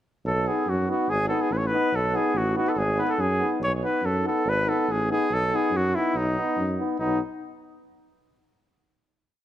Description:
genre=balkan folk, Balkan brass band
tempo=142 BPM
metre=2/4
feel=straight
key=B mixolydian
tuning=A4 = 441 Hz
part: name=warm tuba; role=bass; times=0.2-7.2 s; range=G#1 to F#2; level=-28 LUFS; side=right 1 dB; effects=none
part: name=clear cornet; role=melody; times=0.3-7.2 s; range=D#4 to C#5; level=-25 LUFS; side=equal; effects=slapback echo
part: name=brilliant trombone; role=accompaniment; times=0.5-7.2 s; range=B3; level=-31 LUFS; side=right 6 dB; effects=none
part: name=mellow euphonium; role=accompaniment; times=0.5-7.2 s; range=D#4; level=-30 LUFS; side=left 7 dB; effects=none
room=moderate concert hall reverb, RT60 2.0 s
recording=close, detailed microphones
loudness=-22 LUFS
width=side -12 dB against mid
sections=0.2-7.0 A section; 7.0-7.8 final chord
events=none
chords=0.2 B; 1.1 G#m; 1.9 B; 2.8 G#m; 3.6 B; 4.5 G#m; 5.3 B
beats=| 0.25 0.67 | 1.08 1.50 | 1.92 2.35 | 2.77 3.19 | 3.61 4.03 | 4.46 4.88 | 5.30 5.73 | 6.15 6.57 | 6.99

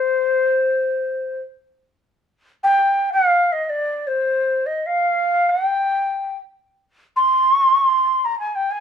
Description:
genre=Arabic maqam ensemble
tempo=free time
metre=none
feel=none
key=unclear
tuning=A4 = 441 Hz
part: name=breathy ney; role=solo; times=0.0-8.8 s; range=C5 to C6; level=-16 LUFS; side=equal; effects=none
room=moderate studio reverb, RT60 0.8 s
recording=band playing live in one room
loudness=-16 LUFS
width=side -8 dB against mid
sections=0.0-8.8 A section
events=none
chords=none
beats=free time

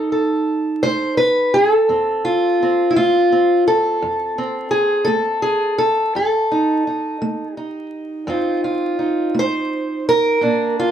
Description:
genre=acoustic country blues, solo or duo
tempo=56 BPM (dotted quarters)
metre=12/8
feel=straight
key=F mixolydian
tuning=A4 = 440 Hz
part: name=fingerpicked steel-string acoustic guitar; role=solo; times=0.0-10.9 s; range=F2 to C5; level=-16 LUFS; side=equal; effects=none
room=light reverb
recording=vinyl crackle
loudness=-15 LUFS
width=side -9 dB against mid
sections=0.0-10.9 A section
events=none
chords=0.0 F7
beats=0.84 | 1.90 2.97 4.03 5.10 | 6.16 7.23 8.29 9.36 | 10.42

